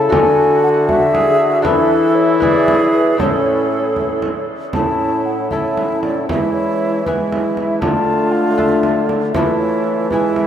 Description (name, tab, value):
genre	classical, renaissance-style consort dance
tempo	78 BPM (dotted quarters)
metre	6/8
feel	straight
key	A major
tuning	A4 = 440 Hz
part	mellow baroque flute	melody	0.0-10.5 s	B4 to A5	-20 LUFS	left 3 dB	none
part	mellow tenor recorder	second line	0.0-10.5 s	E4 to A4	-20 LUFS	right 3 dB	none
part	lute	accompaniment	0.0-10.5 s	A2 to A4	-25 LUFS	left 3 dB	none
part	warm trombone	accompaniment	0.0-10.5 s	G#3 to A4	-18 LUFS	left 2 dB	none
part	warm bassoon	bass	0.0-10.5 s	A2 to E3	-21 LUFS	right 2 dB	none
part	frame drum	percussion	0.1-10.5 s	none	-25 LUFS	right 2 dB	none
room	wet huge ambient reverb, RT60 8.8 s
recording	in a vast, echoing space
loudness	-13 LUFS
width	side -9 dB against mid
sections	0.0-4.7 A section; 4.7-10.5 B section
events	none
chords	0.1 D; 1.6 E7sus4; 2.4 E7; 3.2 A; 6.3 E; 7.8 Dm; 9.3 Esus4